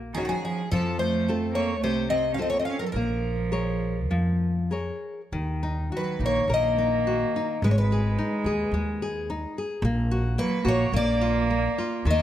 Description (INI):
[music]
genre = fado-style ballad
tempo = 107 BPM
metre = 4/4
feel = rubato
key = Bb minor, Eb minor from 5.3 s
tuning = A4 = 441 Hz
[part]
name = nylon-string guitar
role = accompaniment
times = 0.0-12.2 s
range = C3 to Db5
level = -29 LUFS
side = left 2 dB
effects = none
[part]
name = upright bass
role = bass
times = 0.0-12.2 s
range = Ab1 to F2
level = -28 LUFS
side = equal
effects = none
[part]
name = picked twelve-string acoustic guitar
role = melody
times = 0.1-12.2 s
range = Gb4 to F5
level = -28 LUFS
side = left 2 dB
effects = none
[part]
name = rich cello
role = second line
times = 0.1-12.2 s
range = Eb3 to Db4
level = -29 LUFS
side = right 5 dB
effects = none
[sound]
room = light reverb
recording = close, detailed microphones, lossy compression artefacts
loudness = -23 LUFS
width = side -12 dB against mid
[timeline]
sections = 0.0-5.3 A section; 5.3-12.2 B section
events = none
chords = 0.0 Ebm7; 0.7 F; 2.9 Bbm7; 5.3 Ebm; 7.6 Abm; 9.8 Gbadd11/Bb; 10.9 Bb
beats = 0.17 | 0.72 1.28 1.83 2.38 | 2.95 3.52 4.10 4.71 | 5.33 5.91 6.49 7.06 | 7.63 8.19 8.73 9.29 | 9.83 10.38 10.93 11.50 | 12.06